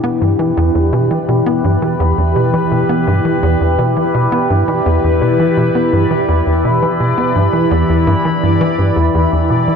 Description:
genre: ambient, sequencer-driven space music.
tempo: 84 BPM.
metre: 4/4.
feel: straight.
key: E minor.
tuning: A4 = 442 Hz.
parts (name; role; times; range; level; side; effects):
evolving wavetable pad; sustained chords; 0.0-9.8 s; E3 to B5; -14 LUFS; equal; phaser, built-in reverb.
tight sequencer bass; riff; 0.0-9.8 s; E2 to B3; -15 LUFS; equal; wide subtle chorus, analog delay.
bubbling stepped-filter texture; texture; 0.0-9.8 s; D5; -29 LUFS; right 4 dB; chorus, built-in reverb.
room: wet huge ambient reverb, RT60 8.0 s.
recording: worn, warbling old tape, cassette tape, warbly pitch drift.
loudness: -11 LUFS.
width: side -6 dB against mid.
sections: 0.0-9.8 A section.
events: fade-in on synth texture 0.0-9.8.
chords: 0.0 Em.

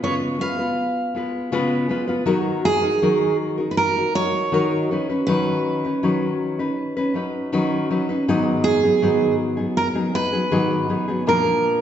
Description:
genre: pop.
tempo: 80 BPM.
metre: 4/4.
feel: straight.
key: Eb minor.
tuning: A4 = 440 Hz.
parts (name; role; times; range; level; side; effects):
picked steel-string acoustic guitar; melody; 0.0-11.8 s; Ab4 to F5; -22 LUFS; right 3 dB; none.
nylon-string guitar; accompaniment; 0.0-11.8 s; Ab2 to Cb5; -21 LUFS; left 2 dB; none.
room: wet recital hall reverb, RT60 1.6 s.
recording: recorded in a church or concert hall, nothing above 8.0 kHz.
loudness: -18 LUFS.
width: side -10 dB against mid.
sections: 0.0-2.3 A section; 2.3-11.8 B section.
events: none.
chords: 0.0 Db7; 2.3 Ebm; 4.9 Badd9/D#; 8.3 Abm7; 11.3 Bb.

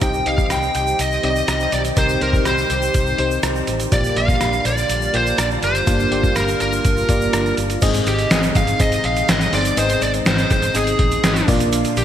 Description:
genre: 1980s-style pop.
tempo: 123 BPM.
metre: 4/4.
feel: straight.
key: unclear.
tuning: A4 = 440 Hz.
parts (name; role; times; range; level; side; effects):
smooth overdriven lead guitar; melody; 0.0-12.0 s; G4 to G5; -20 LUFS; equal; none.
FM electric piano; accompaniment; 0.0-12.0 s; G2 to Eb5; -23 LUFS; left 1 dB; chorus.
lush unison pad; sustained chords; 0.0-12.0 s; C3 to G4; -28 LUFS; equal; chorus.
funky polysynth comp; stabs; 0.0-7.8 s; Bb3 to D5; -28 LUFS; right 1 dB; chorus.
vintage muted fingered electric bass; bass; 0.0-12.0 s; F#1 to C2; -24 LUFS; equal; none.
trip hop sampler-style drum kit; drums; 0.0-12.0 s; crash cymbal, hi-hat, kick drum, rim click, snare drum; -20 LUFS; equal; gated reverb.
tube shaker; percussion; 0.0-12.0 s; none; -33 LUFS; right 7 dB; none.
room: moderate lush hall reverb, RT60 2.2 s.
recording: bright 1980s-style digital production.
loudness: -15 LUFS.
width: side -10 dB against mid.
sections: 0.0-7.8 A section; 7.8-12.0 B section.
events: none.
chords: 0.0 Cm; 3.9 Bb6; 5.9 Gm7; 7.8 Ab; 11.5 Bb.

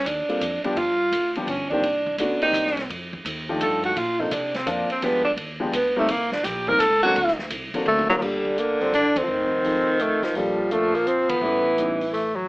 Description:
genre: jazz, small-group swing and bop.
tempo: 169 BPM.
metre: 3/4.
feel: swing 65% on 8ths.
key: G minor.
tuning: A4 = 441 Hz.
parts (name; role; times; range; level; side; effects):
breathy tenor saxophone; second line; 0.0-12.4 s; D3 to Bb4; -22 LUFS; right 1 dB; none.
upright bass; bass; 0.0-12.4 s; F1 to C3; -37 LUFS; equal; none.
open jazz drum kit; drums; 0.1-12.2 s; crash cymbal, hi-hat, kick drum, ride cymbal, snare drum, toms; -32 LUFS; right 1 dB; none.
warm upright piano; accompaniment; 0.3-12.0 s; D3 to D5; -27 LUFS; left 1 dB; none.
mellow tenor saxophone; melody; 7.9-12.5 s; F3 to D4; -22 LUFS; equal; none.
room: moderate club reverb, RT60 0.6 s.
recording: AM radio sound.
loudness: -20 LUFS.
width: side -22 dB against mid.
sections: 0.0-8.2 A section; 8.2-12.5 B section.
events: tenor saxophone solo 0.0-8.2; drum fill 7.9-8.2; band accent 9.1, 11.2.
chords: 0.0 Gm11; 0.8 G7(no3); 1.8 Cm9; 2.9 F13; 4.0 Bbadd9; 5.0 G7b9; 6.1 C7(no3); 7.2 D7b13; 8.2 Gm; 9.3 F7; 10.4 Bbmaj7; 11.4 A9.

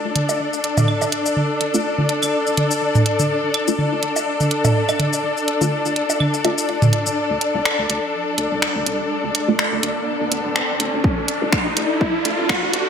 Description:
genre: minimal techno.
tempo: 124 BPM.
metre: 4/4.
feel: swing 56% on 16ths.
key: unclear.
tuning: A4 = 444 Hz.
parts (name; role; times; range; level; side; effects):
warm studio string section; texture; 0.0-12.9 s; D4 to D5; -21 LUFS; left 2 dB; sidechain pumping.
house drum kit; drums; 0.2-12.8 s; finger snaps, hi-hat, shaker; -23 LUFS; equal; overdrive.
electronic toms, bongos and claves; percussion; 0.2-6.9 s; none; -20 LUFS; right 2 dB; analog delay.
filtered dub chord stab; stabs; 1.7-11.5 s; A3 to F4; -25 LUFS; left 1 dB; phaser, analog chorus, analog delay.
riser; sound effects; 8.3-12.9 s; none; -24 LUFS; right 1 dB; none.
rubbery square bass; bass; 7.3-12.9 s; D1 to D2; -30 LUFS; equal; sidechain pumping, high-pass filter.
electronic kick drum; drums; 11.0-12.6 s; none; -20 LUFS; equal; overdrive.
room: wet plate reverb, RT60 2.0 s.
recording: dreamy mix soaked in reverb, high-pass filter.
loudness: -17 LUFS.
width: side -7 dB against mid.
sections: 0.0-7.2 A section; 7.2-12.9 B section.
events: filter sweep on synth stab 0.0-7.2, 7.2-12.9; build-up 7.2-12.9; riser 8.3-12.9.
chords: 0.0 D5.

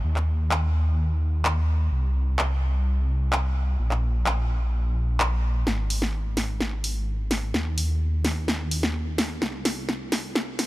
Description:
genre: EDM, festival progressive house.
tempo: 128 BPM.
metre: 4/4.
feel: straight.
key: C minor.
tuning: A4 = 441 Hz.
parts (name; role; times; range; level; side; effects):
detuned saw bass; bass; 0.0-10.7 s; Ab1 to Eb2; -24 LUFS; equal; none.
big-room dance drum kit; drums; 0.2-10.7 s; handclaps, hi-hat, snare drum; -27 LUFS; equal; none.
room: little or no reverb.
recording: dark, warm production, high-pass filter.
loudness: -23 LUFS.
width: side -18 dB against mid.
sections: 0.0-5.7 A section; 5.7-10.7 B section.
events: build-up 5.7-10.7; drum fill 5.7-10.7.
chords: none.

